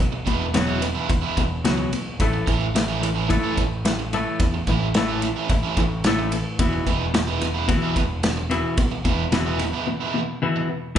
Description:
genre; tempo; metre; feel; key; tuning
indie rock; 109 BPM; 4/4; straight; E major; A4 = 440 Hz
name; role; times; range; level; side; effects
twelve-string electric guitar; riff; 0.0-11.0 s; E2 to A3; -24 LUFS; left 2 dB; none
growling fingered electric bass; bass; 0.0-11.0 s; E1 to E2; -28 LUFS; equal; overdrive
biting overdriven guitar; riff; 0.1-10.6 s; E3 to E4; -27 LUFS; right 5 dB; none
loose indie drum kit; drums; 0.3-11.0 s; crash cymbal, kick drum, ride cymbal, snare drum; -24 LUFS; equal; none
room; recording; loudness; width
moderate large studio reverb, RT60 1.1 s; band playing live in one room, nothing above 10.7 kHz; -20 LUFS; side -10 dB against mid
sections
0.0-11.0 A section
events
break 9.9-11.0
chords
0.0 Eadd9; 2.2 A; 6.6 E

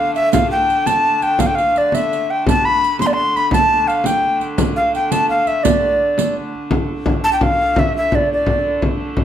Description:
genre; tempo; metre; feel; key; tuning
medieval dance; 113 BPM (dotted quarters); 6/8; straight; D dorian; A4 = 438 Hz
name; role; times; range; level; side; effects
mellow tenor recorder; melody; 0.0-8.8 s; D5 to C6; -15 LUFS; left 1 dB; none
warm hurdy-gurdy; drone; 0.0-9.2 s; D3 to A3; -26 LUFS; right 2 dB; none
frame drum; percussion; 0.2-9.2 s; none; -20 LUFS; left 1 dB; none
riq; percussion; 0.2-6.3 s; none; -23 LUFS; right 8 dB; none
room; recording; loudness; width
moderate large studio reverb, RT60 0.8 s; band playing live in one room; -14 LUFS; side -10 dB against mid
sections
0.0-6.7 A section; 6.7-9.2 B section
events
none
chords
none

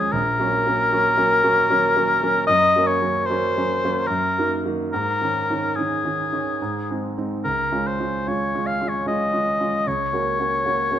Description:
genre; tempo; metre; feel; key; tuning
classical, romantic duo for oboe and grand piano; 71-78 BPM; 3/4; rubato; unclear; A4 = 439 Hz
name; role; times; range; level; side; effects
warm oboe; melody; 0.0-11.0 s; Ab4 to F5; -20 LUFS; left 2 dB; none
warm grand piano; accompaniment; 0.0-11.0 s; Bb1 to Gb4; -24 LUFS; right 2 dB; none
room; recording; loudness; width
moderate recital hall reverb, RT60 1.4 s; none; -19 LUFS; side -10 dB against mid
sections
0.0-11.0 A section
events
none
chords
0.1 Gb/Bb; 2.5 Gb; 4.1 Ebm/Gb; 4.9 Absus4; 6.6 Ab; 7.4 Db; 9.9 Gb/Db

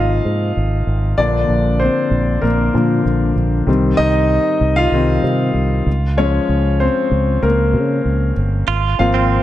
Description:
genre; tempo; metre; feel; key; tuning
piano-driven pop; 96 BPM; 4/4; straight; unclear; A4 = 439 Hz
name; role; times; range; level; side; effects
clear grand piano; accompaniment; 0.0-9.4 s; C3 to F5; -16 LUFS; left 2 dB; none
fingered electric bass with an envelope filter; bass; 0.0-9.4 s; G1 to Db3; -17 LUFS; equal; none
direct-recorded clean electric guitar; riff; 8.7-9.4 s; C4 to F4; -19 LUFS; right 11 dB; spring reverb, tape echo
room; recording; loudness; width
light reverb, small room ambience; echo-heavy mix; -14 LUFS; side -13 dB against mid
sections
0.0-9.4 A section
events
grand piano solo 0.0-9.4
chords
0.0 Ab6; 1.2 Bb; 3.7 Cm; 5.9 Db; 8.7 Ab6

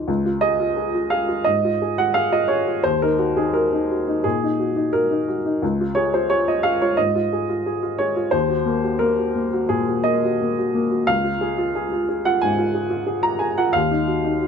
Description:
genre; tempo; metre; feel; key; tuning
neoclassical minimalist piano; 88 BPM; 4/4; rubato; Db major; A4 = 440 Hz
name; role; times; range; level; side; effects
warm upright piano; solo; 0.0-14.5 s; Db2 to Bb5; -18 LUFS; equal; none
room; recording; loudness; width
light reverb; close, detailed microphones; -18 LUFS; side -6 dB against mid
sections
0.1-14.5 A section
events
none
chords
0.1 Db; 2.8 Ebm; 5.6 Db; 8.3 Ebm; 11.1 Db; 13.7 Ebm

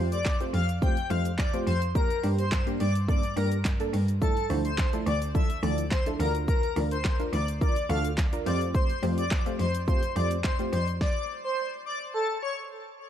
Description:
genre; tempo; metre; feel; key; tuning
dance-pop; 106 BPM; 4/4; straight; unclear; A4 = 440 Hz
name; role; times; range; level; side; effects
punchy chord stab; accompaniment; 0.0-10.8 s; F3 to C5; -33 LUFS; right 1 dB; chorus, sidechain pumping
clear cello; bass; 0.0-11.0 s; D2 to G2; -29 LUFS; equal; sidechain pumping
airy dreamy lead; melody; 0.1-12.6 s; A4 to G5; -31 LUFS; left 2 dB; chorus, digital delay
house drum kit; drums; 0.1-11.1 s; handclaps, hi-hat, kick drum, shaker, snare drum; -28 LUFS; equal; none
room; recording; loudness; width
little or no reverb; dark, warm production; -25 LUFS; side -10 dB against mid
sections
0.0-13.1 A section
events
stop 11.0-13.1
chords
0.0 Fadd9; 2.0 Gm; 4.2 Dmadd9; 6.2 Bb/D; 8.5 Fadd9; 11.0 N.C.

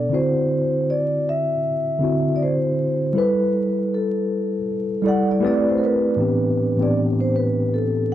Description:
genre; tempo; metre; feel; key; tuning
hip hop; 79 BPM; 4/4; swing 58% on 16ths; A dorian; A4 = 440 Hz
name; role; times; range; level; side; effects
vibraphone with soft mallets; melody; 0.0-8.1 s; A4 to F#5; -22 LUFS; equal; low-pass filter
mellow tine electric piano; accompaniment; 0.0-8.1 s; A2 to D5; -20 LUFS; equal; medium stereo tremolo, low-pass filter
room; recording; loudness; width
moderate spring reverb, RT60 2.3 s; vinyl crackle; -18 LUFS; side -12 dB against mid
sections
0.0-6.2 A section; 6.2-8.1 B section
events
none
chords
0.1 D9; 3.2 G69; 5.4 Am11

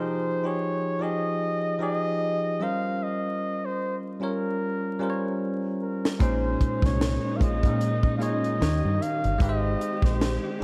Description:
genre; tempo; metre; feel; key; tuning
R&B, neo-soul; 75 BPM; 4/4; swing 58% on 16ths; unclear; A4 = 436 Hz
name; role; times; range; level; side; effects
trumpet with bucket mute; melody; 0.0-10.4 s; Bb4 to F5; -32 LUFS; equal; none
bell-like tine electric piano; accompaniment; 0.0-10.6 s; Bb2 to Db5; -31 LUFS; equal; none
tight funk drum kit; drums; 6.1-10.4 s; hi-hat, kick drum, snare drum; -28 LUFS; equal; none
warm studio string section; sustained chords; 6.2-10.6 s; Eb3 to G4; -39 LUFS; equal; none
deep dub fingered electric bass; bass; 6.2-10.4 s; G1 to Bb2; -29 LUFS; equal; none
room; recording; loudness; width
moderate plate reverb, RT60 2.2 s; dreamy mix soaked in reverb, vinyl crackle; -26 LUFS; mono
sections
0.0-10.6 A section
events
drum fill 4.6-6.2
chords
0.0 Fm9; 2.6 Eb13/G (rootless); 6.2 Bbm11; 8.6 Eb7; 9.4 Abmaj7

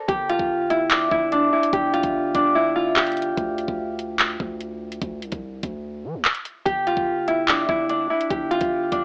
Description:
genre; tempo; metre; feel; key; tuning
hip hop, drill; 146 BPM; 4/4; half-time; D minor; A4 = 439 Hz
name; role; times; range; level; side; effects
Celtic harp; melody; 0.0-9.0 s; D4 to D5; -20 LUFS; equal; cassette tape, tape echo
long sustained 808-style bass; bass; 0.1-9.0 s; G1 to F3; -35 LUFS; equal; none
drill drum kit; drums; 0.1-9.0 s; handclaps, hi-hat, kick drum; -23 LUFS; equal; none
room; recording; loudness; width
moderate booth ambience, RT60 0.2 s; home recording on cassette, AM radio sound; -19 LUFS; side -37 dB against mid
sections
0.0-9.0 A section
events
break 3.4-6.7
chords
0.1 Dmadd11/G; 3.4 Dm; 6.7 Dmadd11/G

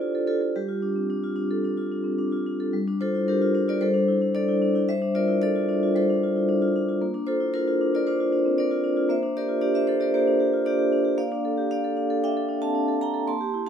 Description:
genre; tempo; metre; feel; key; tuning
classical, contemporary piece for solo vibraphone; 113 BPM; 4/4; rubato; G dorian; A4 = 440 Hz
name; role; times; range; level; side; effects
vibraphone with medium hard mallets; solo; 0.0-13.7 s; G3 to C6; -22 LUFS; equal; none
room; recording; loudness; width
light reverb; close, detailed microphones; -22 LUFS; side -8 dB against mid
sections
0.0-2.7 A section; 2.7-13.7 A section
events
none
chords
0.0 Dm7; 0.6 Gsus2; 2.7 Gm7; 3.8 C69/G; 4.9 Dm7/G; 7.0 Bbadd9; 9.1 Csus2/Bb

